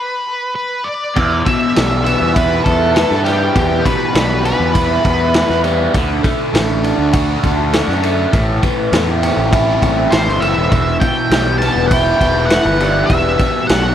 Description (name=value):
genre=psychedelic rock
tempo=100 BPM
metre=4/4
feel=straight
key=unclear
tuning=A4 = 440 Hz
part: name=octave-fuzz lead guitar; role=melody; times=0.0-5.6, 10.1-13.9 s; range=G4 to A5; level=-19 LUFS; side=equal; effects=distortion, tape echo
part: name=overdriven electric guitar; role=riff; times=1.2-13.9 s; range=E2 to F#4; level=-16 LUFS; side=equal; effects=phaser
part: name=fuzz picked electric bass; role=bass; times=1.2-13.9 s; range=E1 to G2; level=-18 LUFS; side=equal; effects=overdrive
part: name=vintage drum kit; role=drums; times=1.2-13.8 s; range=crash cymbal, kick drum, ride cymbal, snare drum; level=-17 LUFS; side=equal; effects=none
room=small room ambience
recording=none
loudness=-12 LUFS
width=side -10 dB against mid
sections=0.0-1.2 A section; 1.2-13.9 B section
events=stop 0.0-1.2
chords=0.0 N.C.; 1.2 Em; 5.9 D; 8.3 Am; 10.7 Em